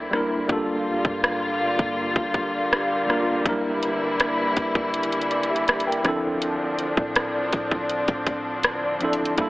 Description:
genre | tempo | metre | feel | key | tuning
contemporary R&B | 81 BPM | 4/4 | straight | D minor | A4 = 441 Hz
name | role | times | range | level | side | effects
tine electric piano | accompaniment | 0.0-9.5 s | F3 to G5 | -26 LUFS | equal | overdrive, fast stereo tremolo
dark studio string section | sustained chords | 0.0-9.5 s | D3 to F4 | -25 LUFS | left 1 dB | none
clean 808-style bass | bass | 0.0-9.5 s | E1 to A2 | -36 LUFS | equal | none
trap drum kit | drums | 0.1-9.5 s | hi-hat, kick drum, rim click | -24 LUFS | equal | none
room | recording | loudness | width
moderate concert hall reverb, RT60 2.5 s | AM radio sound | -21 LUFS | side -19 dB against mid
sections
0.0-9.5 A section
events
none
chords
0.5 Gm9; 3.5 Em7b5; 6.0 Dm7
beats
| 0.49 1.23 1.97 2.71 | 3.45 4.20 4.94 5.68 | 6.42 7.16 7.90 8.64 | 9.38

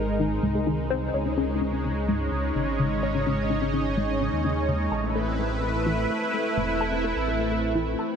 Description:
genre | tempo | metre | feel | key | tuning
IDM | 127 BPM | 4/4 | straight | unclear | A4 = 439 Hz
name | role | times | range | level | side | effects
warm analog pad | sustained chords | 0.0-8.2 s | Ab3 to E5 | -26 LUFS | right 1 dB | chorus
dark detuned saw bass | bass | 0.0-8.0 s | E1 to Eb2 | -30 LUFS | equal | none
warbly dusty pluck | arpeggios | 0.2-8.0 s | Db3 to A5 | -29 LUFS | left 3 dB | chorus, ping-pong delay
room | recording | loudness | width
moderate huge ambient reverb, RT60 7.0 s | none | -23 LUFS | side -7 dB against mid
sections
0.0-8.2 A section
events
none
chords
0.0 Abadd9; 1.1 Dbsus2; 4.9 Amadd9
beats
0.20 0.67 | 1.14 1.61 2.08 2.56 | 3.03 3.50 3.98 4.45 | 4.92 5.39 5.87 6.34 | 6.81 7.28 7.75

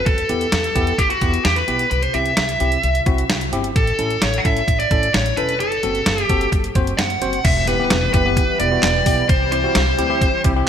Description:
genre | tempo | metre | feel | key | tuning
synth-pop | 130 BPM | 4/4 | straight | E minor | A4 = 444 Hz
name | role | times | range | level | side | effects
dark smooth lead guitar | melody | 0.0-10.4 s | F#4 to F#5 | -19 LUFS | equal | overdrive, ping-pong delay
upright bass | bass | 0.1-10.6 s | E1 to E2 | -23 LUFS | equal | none
detuned 8-bit digital drum machine | drums | 0.1-10.6 s | crash cymbal, handclaps, hi-hat, kick drum, snare drum | -20 LUFS | equal | none
bell-like tine electric piano | accompaniment | 0.3-10.7 s | B3 to C5 | -25 LUFS | left 2 dB | medium stereo tremolo
sweeping resonant pad | sustained chords | 7.7-10.7 s | E3 to G4 | -28 LUFS | equal | chorus
impact | sound effects | 7.4-9.3 s | none | -30 LUFS | equal | none
room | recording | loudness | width
light reverb, digital ambience | bright 1980s-style digital production | -15 LUFS | side -8 dB against mid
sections
0.0-7.4 A section; 7.4-10.7 B section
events
impact 7.4-9.3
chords
0.1 Em; 1.9 C; 3.8 A; 5.6 F#dim; 7.4 Em; 9.3 C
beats
| 0.06 0.53 0.99 1.45 | 1.91 2.37 2.83 3.29 | 3.76 4.22 4.68 5.14 | 5.60 6.06 6.53 6.99 | 7.45 7.91 8.37 8.83 | 9.29 9.76 10.22 10.68

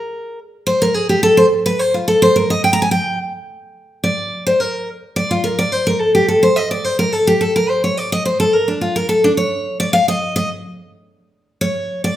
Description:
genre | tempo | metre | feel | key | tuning
bluegrass | 214 BPM | 4/4 | straight | Bb major | A4 = 440 Hz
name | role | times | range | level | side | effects
picked steel-string acoustic guitar | solo | 0.0-12.2 s | D4 to Bb5 | -14 LUFS | equal | none
room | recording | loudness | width
wet large studio reverb, RT60 1.1 s | heard from further back in the room | -14 LUFS | side -12 dB against mid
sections
0.0-3.5 A section; 3.5-12.2 A section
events
steel-string acoustic guitar solo 0.0-3.5, 3.5-12.2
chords
none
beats
| 0.10 0.38 0.67 0.95 | 1.23 1.51 1.79 2.07 | 2.35 2.63 2.91 3.19 | 3.48 3.76 4.04 4.32 | 4.60 4.88 5.16 5.44 | 5.72 6.00 6.29 6.57 | 6.85 7.13 7.41 7.69 | 7.97 8.25 8.53 8.81 | 9.09 9.37 9.65 9.93 | 10.21 10.49 10.77 11.05 | 11.33 11.61 11.89

